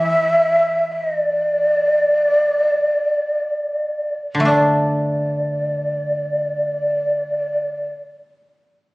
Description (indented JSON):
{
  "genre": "japanese traditional, Japanese chamber music",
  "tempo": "free time",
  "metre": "none",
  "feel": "none",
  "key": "unclear",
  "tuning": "A4 = 440 Hz",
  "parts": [
    { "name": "breathy mellow shakuhachi", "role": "melody", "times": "0.0-7.9 s", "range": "D5 to E5", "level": "-17 LUFS", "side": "equal", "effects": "none" },
    { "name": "koto", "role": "accompaniment", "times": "0.0-8.0 s", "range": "D3 to D4", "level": "-22 LUFS", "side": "equal", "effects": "none" }
  ],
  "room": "moderate recital hall reverb, RT60 1.6 s",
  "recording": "recorded on a phone in the room, studio reverb",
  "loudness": "-17 LUFS",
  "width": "side -23 dB against mid",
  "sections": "0.0-4.5 A section; 4.5-8.9 B section",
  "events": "slowing down 0.0-4.5",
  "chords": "none"
}